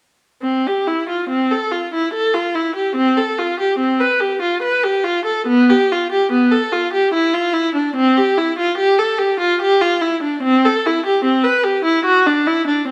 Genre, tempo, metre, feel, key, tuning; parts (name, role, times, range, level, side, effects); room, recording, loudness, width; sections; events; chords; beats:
classical, baroque-style suite movement for unaccompanied viola; 73 BPM; 3/4; rubato; C major; A4 = 440 Hz
rich viola; solo; 0.4-12.9 s; B3 to B4; -17 LUFS; equal
wet stone room reverb, RT60 1.0 s; heard from further back in the room; -17 LUFS; mono
0.4-12.9 A section
| 0.42 1.29 2.12 | 2.96 3.79 4.62 | 5.47 6.31 7.12 | 7.94 8.76 9.58 | 10.41 11.23 12.04 | 12.86